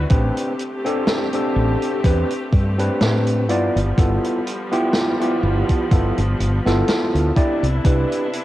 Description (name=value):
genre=vaporwave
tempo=62 BPM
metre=4/4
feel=swing 55% on 16ths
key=A minor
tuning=A4 = 441 Hz
part: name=rich studio string section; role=sustained chords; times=0.0-8.4 s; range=C3 to G4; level=-28 LUFS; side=left 1 dB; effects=none
part: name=woody fretless electric bass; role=bass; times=0.0-8.0 s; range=G1 to A2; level=-20 LUFS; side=equal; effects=none
part: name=overdriven tine electric piano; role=accompaniment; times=0.1-8.3 s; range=B3 to D5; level=-21 LUFS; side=equal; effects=wide subtle chorus, analog delay
part: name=electronic kick drum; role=drums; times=0.1-8.1 s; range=none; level=-17 LUFS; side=equal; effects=overdrive
part: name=vintage drum kit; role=drums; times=0.1-8.4 s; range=hi-hat, snare drum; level=-26 LUFS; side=equal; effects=none
room=light reverb, small room ambience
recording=cassette tape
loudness=-17 LUFS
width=side -15 dB against mid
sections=0.0-8.4 A section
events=none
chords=0.1 Am11; 3.5 G13; 7.4 Cmaj9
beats=| 0.11 1.08 2.04 3.01 | 3.98 4.95 5.91 6.88 | 7.85